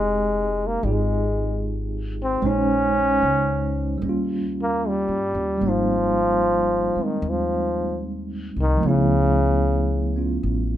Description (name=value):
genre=jazz ballad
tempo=75 BPM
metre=4/4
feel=swing 68% on 8ths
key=unclear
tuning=A4 = 440 Hz
part: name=clear trombone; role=melody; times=0.0-10.4 s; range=Db3 to Db4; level=-22 LUFS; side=equal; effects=none
part: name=bright tine electric piano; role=accompaniment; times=0.0-10.8 s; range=F3 to C5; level=-26 LUFS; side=right 2 dB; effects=medium tremolo
part: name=upright bass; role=bass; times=0.0-10.8 s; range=F1 to G2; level=-26 LUFS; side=left 1 dB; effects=none
room=light reverb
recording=minimal, uncompressed stereo recording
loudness=-20 LUFS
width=side -12 dB against mid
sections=0.0-10.8 A section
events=none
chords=0.0 Fm9; 2.4 Bbm11; 4.0 Eb7; 5.6 Abmaj7; 8.8 Db7alt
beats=0.04 0.84 1.64 | 2.44 3.23 4.02 4.82 | 5.62 6.42 7.22 8.02 | 8.82 9.62 10.43